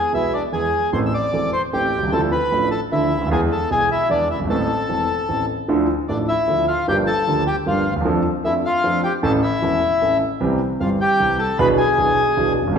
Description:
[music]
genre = tango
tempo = 152 BPM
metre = 3/4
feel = rubato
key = A minor, D minor from 5.7 s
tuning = A4 = 440 Hz
[part]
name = bandoneon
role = melody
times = 0.0-12.5 s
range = D4 to E6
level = -20 LUFS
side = left 1 dB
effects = none
[part]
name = warm concert grand piano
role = accompaniment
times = 0.1-12.8 s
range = E1 to A4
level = -20 LUFS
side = right 1 dB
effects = none
[sound]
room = wet recital hall reverb, RT60 1.5 s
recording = recorded in a church or concert hall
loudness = -17 LUFS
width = side -7 dB against mid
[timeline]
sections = 0.0-5.7 A section; 5.7-12.8 B section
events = none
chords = 0.0 E; 0.9 Am; 2.1 Dmadd9; 3.3 E; 4.5 Am; 5.7 Dmadd9; 6.9 Gm7; 8.1 Dm/F; 9.2 A; 10.4 C; 11.6 E7/B

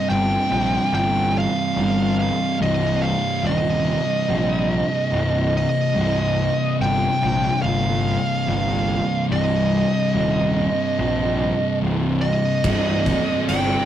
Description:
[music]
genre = stoner and doom metal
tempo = 72 BPM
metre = 4/4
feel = straight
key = C minor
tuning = A4 = 440 Hz
[part]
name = fuzz lead guitar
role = melody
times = 0.0-13.9 s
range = Eb5 to G5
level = -23 LUFS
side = right 2 dB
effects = distortion
[part]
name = thick fuzz guitar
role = riff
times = 0.0-13.9 s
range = C2 to C3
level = -27 LUFS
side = left 9 dB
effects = distortion
[part]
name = thick fuzz guitar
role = riff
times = 0.0-13.9 s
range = C2 to C3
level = -23 LUFS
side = right 2 dB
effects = distortion
[part]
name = fuzz picked electric bass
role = bass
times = 0.1-13.8 s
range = C1 to Bb1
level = -23 LUFS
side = equal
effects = overdrive
[part]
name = oversized low-tuned drum kit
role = drums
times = 12.6-13.7 s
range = crash cymbal, kick drum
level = -23 LUFS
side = equal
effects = none
[sound]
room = light reverb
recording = rough rehearsal-room recording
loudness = -18 LUFS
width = side -11 dB against mid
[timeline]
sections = 0.0-13.9 A section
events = none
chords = 0.0 Cm

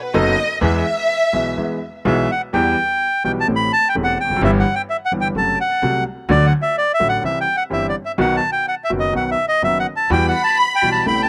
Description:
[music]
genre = tango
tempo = 127 BPM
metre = 4/4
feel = rubato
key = E minor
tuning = A4 = 443 Hz
[part]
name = warm studio violin section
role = second line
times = 0.0-2.0, 10.1-11.3 s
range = B4 to B5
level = -22 LUFS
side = equal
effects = slapback echo
[part]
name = clear upright piano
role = accompaniment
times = 0.1-11.3 s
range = E1 to A4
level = -23 LUFS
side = equal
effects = slapback echo
[part]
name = upright bass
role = bass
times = 0.1-11.3 s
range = E1 to E2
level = -26 LUFS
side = equal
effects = none
[part]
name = bandoneon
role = melody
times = 2.1-11.3 s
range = D5 to B5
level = -20 LUFS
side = equal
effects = slapback echo
[sound]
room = little or no reverb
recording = recorded outdoors, with no room sound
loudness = -18 LUFS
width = mono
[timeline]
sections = 0.0-2.5 A section; 2.5-11.3 B section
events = violin section solo 0.0-2.5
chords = 0.0 B7; 0.6 E; 2.5 Em; 3.5 Am7; 4.4 Em/G; 5.4 F#dim; 6.3 D; 7.2 C; 8.2 B; 10.1 Emadd9

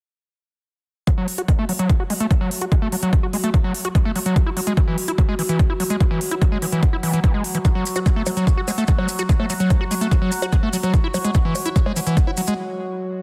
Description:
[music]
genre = psychedelic trance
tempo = 146 BPM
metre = 4/4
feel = straight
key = unclear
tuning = A4 = 440 Hz
[part]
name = overtone-sweeping drone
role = sustained chords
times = 1.3-13.2 s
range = F#3 to F#4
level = -31 LUFS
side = equal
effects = chorus, built-in reverb, sidechain pumping
[part]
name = overdriven acid bass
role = riff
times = 1.1-12.5 s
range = E3 to F#4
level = -25 LUFS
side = equal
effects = distortion, sidechain pumping, dub echo
[part]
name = electronic hi-hat and bongos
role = drums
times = 1.1-12.6 s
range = none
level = -31 LUFS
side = equal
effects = none
[part]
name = electronic kick drum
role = drums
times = 1.1-12.3 s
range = none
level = -20 LUFS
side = equal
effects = none
[part]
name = maracas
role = percussion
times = 7.6-12.6 s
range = none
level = -34 LUFS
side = equal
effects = none
[sound]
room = light reverb, digital ambience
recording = dense, heavily limited modern master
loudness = -20 LUFS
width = mono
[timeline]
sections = 1.1-13.2 A section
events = filter sweep on acid bass 1.1-13.2; break 12.6-13.2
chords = 1.1 N.C.; 4.4 Esus2; 7.6 N.C.; 10.9 Esus2

